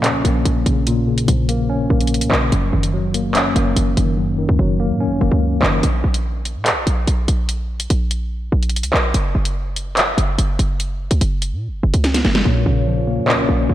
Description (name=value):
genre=hip hop, drill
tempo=145 BPM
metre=4/4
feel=half-time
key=Bb minor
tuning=A4 = 441 Hz
part: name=tine electric piano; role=accompaniment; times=0.0-5.9, 12.5-13.7 s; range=Gb2 to Db4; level=-19 LUFS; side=left 2 dB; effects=overdrive, fast stereo tremolo
part: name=short 808-style bass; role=bass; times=0.0-13.7 s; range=Gb1 to Bb2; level=-18 LUFS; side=equal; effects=none
part: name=drill drum kit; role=drums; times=0.0-13.4 s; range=handclaps, hi-hat, snare drum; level=-20 LUFS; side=equal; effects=none
part: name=dark French horn section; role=sustained chords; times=12.5-13.7 s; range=Bb3 to Db5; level=-24 LUFS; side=left 1 dB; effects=none
room=moderate lush hall reverb, RT60 2.0 s, small room reverb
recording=dreamy mix soaked in reverb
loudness=-16 LUFS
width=side -13 dB against mid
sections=0.0-13.7 A section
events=hi-hats muted 4.2-5.8, 12.5-13.7; drum fill 12.0-12.5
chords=0.0 Bbm; 2.5 Gb6; 5.8 N.C.; 12.5 Bbm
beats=0.04 0.45 | 0.87 1.28 1.70 2.11 | 2.52 2.94 3.35 3.76 | 4.18 4.59 5.00 5.42 | 5.83 6.25 6.66 7.07 | 7.49 7.90 8.32 8.73 | 9.14 9.56 9.97 10.38 | 10.80 11.21 11.63 12.04 | 12.45 12.87 13.28 13.70